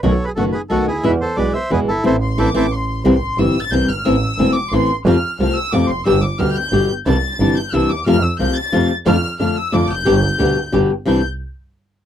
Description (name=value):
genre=tango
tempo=180 BPM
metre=3/4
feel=rubato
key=A harmonic minor, C major from 3.1 s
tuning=A4 = 438 Hz
part: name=flamenco guitar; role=accompaniment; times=0.0-11.2 s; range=B2 to G4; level=-16 LUFS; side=left 2 dB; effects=none
part: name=rich double bass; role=bass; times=0.0-11.2 s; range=E1 to F2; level=-20 LUFS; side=right 2 dB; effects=none
part: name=bandoneon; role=melody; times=0.1-2.7 s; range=E4 to E5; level=-20 LUFS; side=right 1 dB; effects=none
part: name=warm studio violin section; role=second line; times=2.2-11.2 s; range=C6 to A6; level=-22 LUFS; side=left 2 dB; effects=none
room=little or no reverb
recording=dry, close 1970s-style studio recording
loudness=-14 LUFS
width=side -10 dB against mid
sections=0.0-3.1 A section; 3.1-11.1 B section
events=band accent 2.0-3.1; violin section solo 3.1-11.1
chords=0.0 B7; 1.0 E; 2.0 Am; 3.1 C; 4.1 Am; 5.1 F; 6.1 G; 7.1 Cadd9; 8.1 F; 9.1 Dm/F; 10.1 G; 11.1 Cadd9